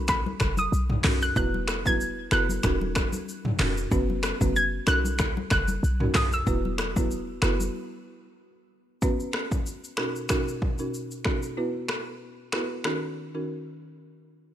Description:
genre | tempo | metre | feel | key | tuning
afrobeats | 94 BPM | 4/4 | swing 55% on 16ths | B major | A4 = 440 Hz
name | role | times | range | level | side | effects
soft round pluck | melody | 0.0-7.6 s | B5 to G#6 | -29 LUFS | equal | chorus, tape echo
folk marimba with medium mallets | accompaniment | 0.0-13.5 s | B2 to B4 | -31 LUFS | right 1 dB | none
short 808-style bass | bass | 0.0-7.7 s | D#1 to B1 | -28 LUFS | equal | none
deep house drum kit | drums | 0.1-13.0 s | finger snaps, handclaps, hi-hat, kick drum, rim click, shaker, toms | -27 LUFS | equal | overdrive
congas | percussion | 0.1-7.7 s | none | -36 LUFS | left 5 dB | none
room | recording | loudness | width
digital ambience | none | -24 LUFS | side -11 dB against mid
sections
0.0-9.0 A section; 9.0-14.1 B section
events
break 7.7-9.0; kick muted 12.9-14.1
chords
0.0 Bmaj7; 1.4 Esus2; 2.6 D#m7; 3.9 F#sus4; 4.9 Bmaj7; 6.5 Esus2; 7.7 N.C.; 9.0 F#sus4; 10.0 Bmaj7; 11.6 Esus2; 12.9 D#m7

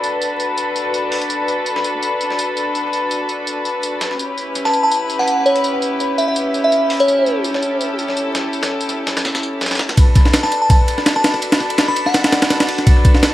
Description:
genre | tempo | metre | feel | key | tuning
drum and bass, jungle | 166 BPM | 4/4 | swing 54% on 16ths | B minor | A4 = 441 Hz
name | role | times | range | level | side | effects
rich studio string section | sustained chords | 0.0-13.3 s | C#4 to B4 | -20 LUFS | left 1 dB | low-pass filter
dusty soul sampler-style drum kit | drums | 0.0-13.3 s | hi-hat, snare drum, tambourine | -24 LUFS | equal | high-pass filter on perc, small room ambience, high-pass filter on snare, high-pass filter on hats, analog delay
glassy synth bell | melody | 4.7-7.4, 10.4-12.3 s | C#5 to B5 | -18 LUFS | equal | chorus, analog delay
breakbeat sampler-style drum kit | drums | 10.0-13.3 s | kick drum, ride cymbal, snare drum | -12 LUFS | equal | small room ambience
room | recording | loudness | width
wet spring reverb, RT60 1.1 s | echo-heavy mix, vinyl crackle | -14 LUFS | side -14 dB against mid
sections
0.0-10.0 A section; 10.0-13.3 B section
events
build-up 10.0-13.3; filter sweep on string section 10.0-13.3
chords
0.0 Bm7; 4.2 C#m7b5; 10.0 Bm7

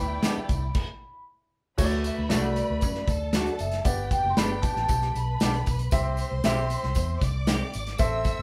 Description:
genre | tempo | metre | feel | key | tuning
uptempo 1960s-style soul | 116 BPM | 4/4 | straight | unclear | A4 = 440 Hz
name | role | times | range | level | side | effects
vibraphone with soft mallets | melody | 0.0-5.6 s | D5 to C6 | -33 LUFS | equal | none
warm studio string section | second line | 0.0-8.4 s | E4 to E6 | -39 LUFS | equal | none
warm grand piano | accompaniment | 0.0-8.4 s | A3 to E5 | -33 LUFS | equal | none
vintage muted fingered electric bass | bass | 0.0-8.4 s | F#1 to F#2 | -32 LUFS | equal | none
electric guitar through a small old amp | stabs | 0.2-7.6 s | E3 to G4 | -35 LUFS | equal | harmonic tremolo
natural country drum kit | drums | 0.2-8.4 s | crash cymbal, hi-hat, kick drum, snare drum | -30 LUFS | equal | none
tambourine | percussion | 0.2-8.4 s | none | -46 LUFS | equal | none
room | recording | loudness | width
wet studio reverb, RT60 0.6 s | band playing live in one room | -26 LUFS | mono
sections
0.0-1.8 A section; 1.8-8.4 B section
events
stop 0.8-1.8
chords
0.0 G6; 1.8 D; 3.9 G; 5.9 C

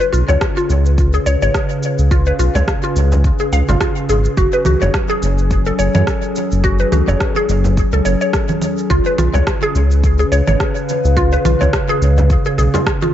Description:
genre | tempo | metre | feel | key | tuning
organic downtempo | 106 BPM | 4/4 | swing 56% on 16ths | unclear | A4 = 444 Hz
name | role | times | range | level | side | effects
warbly tape-like pad | sustained chords | 0.0-13.1 s | C#3 to G#5 | -21 LUFS | left 1 dB | chorus, built-in reverb, sidechain pumping
mallet-like synth pluck | arpeggios | 0.0-13.1 s | E#4 to E#5 | -19 LUFS | equal | ensemble chorus, tape echo
electronic cabasa, rim click and congas | drums | 0.0-13.1 s | none | -23 LUFS | right 2 dB | studio reverb, tape echo
bronze singing bowl | texture | 0.0-13.1 s | none | barely audible | none | none
round analog bass | bass | 0.1-12.7 s | F#1 to F#2 | -14 LUFS | equal | sidechain pumping
frame drum | percussion | 0.3-12.8 s | none | -26 LUFS | right 1 dB | none
electronic kick drum | drums | 0.4-13.0 s | none | -19 LUFS | equal | studio reverb
room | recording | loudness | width
light reverb | echo-heavy mix, nothing above 7.8 kHz | -13 LUFS | side -11 dB against mid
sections
0.0-13.1 A section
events
none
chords
0.0 C#7; 4.4 F#madd9; 8.9 C#7

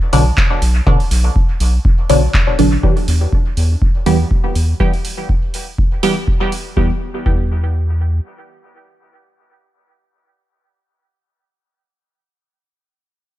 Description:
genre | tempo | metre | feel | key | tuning
dub techno | 122 BPM | 4/4 | swing 55% on 16ths | E minor | A4 = 435 Hz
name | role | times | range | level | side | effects
filtered dub chord stab | stabs | 0.1-11.7 s | B2 to G4 | -18 LUFS | right 1 dB | phaser, sidechain pumping, dub echo
round analog bass | bass | 0.1-8.2 s | A1 to E2 | -14 LUFS | equal | sidechain pumping
booming analog drum machine | drums | 0.1-6.6 s | handclaps, hi-hat | -24 LUFS | right 1 dB | dub echo
electronic kick drum | drums | 0.4-7.4 s | none | -16 LUFS | equal | none
room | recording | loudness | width
digital ambience | echo-heavy mix | -13 LUFS | side -14 dB against mid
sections
0.0-2.8 A section; 2.8-6.8 B section; 6.8-10.7 C section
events
none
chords
0.0 Bm; 2.8 Em

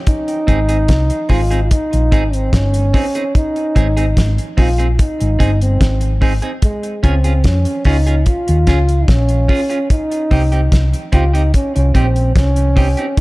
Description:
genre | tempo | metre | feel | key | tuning
roots reggae | 73 BPM | 4/4 | straight | Ab major | A4 = 440 Hz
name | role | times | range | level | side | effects
dark trombone | melody | 0.1-13.2 s | Ab3 to F4 | -19 LUFS | right 1 dB | tape echo
cloth-damped thuddy drum kit | drums | 0.1-13.2 s | hi-hat, kick drum, snare drum | -15 LUFS | equal | none
clean electric guitar | accompaniment | 0.5-13.1 s | C4 to Ab4 | -24 LUFS | right 2 dB | tape echo
hollow-body short-scale fingered electric bass | bass | 0.5-12.9 s | G1 to F2 | -14 LUFS | equal | none
room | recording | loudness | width
little or no reverb | dark, warm production | -12 LUFS | side -20 dB against mid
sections
0.1-13.2 A section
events
none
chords
0.1 Ab; 6.6 Db; 9.9 Cm

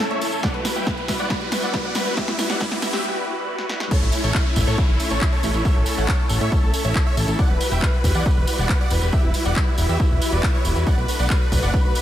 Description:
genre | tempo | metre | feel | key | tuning
uplifting trance | 138 BPM | 4/4 | straight | unclear | A4 = 440 Hz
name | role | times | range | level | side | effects
supersaw chords | melody | 0.0-12.0 s | E4 to G5 | -26 LUFS | right 1 dB | analog chorus, sidechain pumping, low-pass filter, tape echo
filtered supersaw swell | sustained chords | 0.0-12.0 s | G3 to C#5 | -28 LUFS | equal | phaser, sidechain pumping
house drum kit | drums | 0.0-12.0 s | crash cymbal, handclaps, hi-hat, snare drum | -28 LUFS | equal | studio reverb, sidechain pumping on hats, sidechain pumping on cymbals
tambourine | percussion | 0.0-12.0 s | none | -33 LUFS | right 3 dB | none
riser and downlifter | sound effects | 0.0-7.4 s | none | -32 LUFS | equal | none
electronic kick drum | drums | 0.4-11.8 s | none | -21 LUFS | equal | studio reverb
fat analog bass | bass | 4.0-11.9 s | E1 to A2 | -22 LUFS | equal | sidechain pumping
room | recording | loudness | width
moderate lush hall reverb, RT60 1.9 s | dreamy mix soaked in reverb, high-pass filter | -18 LUFS | side -12 dB against mid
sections
0.0-3.9 A section; 3.9-12.0 B section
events
build-up 0.0-3.9; drum fill 0.0-3.0, 3.6-3.9; riser 0.0-3.0; break 3.0-3.9; drop 3.9-12.0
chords
0.4 Emadd9; 3.9 A; 7.4 Emadd9; 10.9 Bm7

